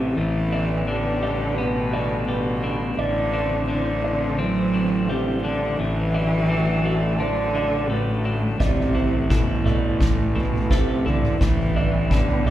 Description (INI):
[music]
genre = post-rock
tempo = 85 BPM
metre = 4/4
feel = straight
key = unclear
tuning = A4 = 439 Hz
[part]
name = dark cello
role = melody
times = 0.0-12.5 s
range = A2 to F#3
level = -24 LUFS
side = equal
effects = none
[part]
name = analog string pad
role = sustained chords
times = 0.0-12.5 s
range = D3 to C5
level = -31 LUFS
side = equal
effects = ensemble chorus
[part]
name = felt-muted upright piano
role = arpeggios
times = 0.0-12.5 s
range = B4 to D5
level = -32 LUFS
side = right 3 dB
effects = none
[part]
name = twelve-string electric guitar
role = arpeggios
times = 0.0-12.5 s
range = A2 to D4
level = -29 LUFS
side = left 2 dB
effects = none
[part]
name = fuzz fingered electric bass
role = bass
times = 0.0-12.5 s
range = A1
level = -27 LUFS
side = left 1 dB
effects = overdrive
[part]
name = soft-mallet drum kit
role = drums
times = 8.6-12.5 s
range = kick drum, toms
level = -21 LUFS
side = right 1 dB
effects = none
[sound]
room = wet recital hall reverb, RT60 1.5 s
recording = recorded in a church or concert hall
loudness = -19 LUFS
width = side -12 dB against mid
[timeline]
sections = 0.0-12.5 A section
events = none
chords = 0.2 G/A; 3.0 Cadd9/A; 5.8 D/A; 8.6 Am; 11.4 G/A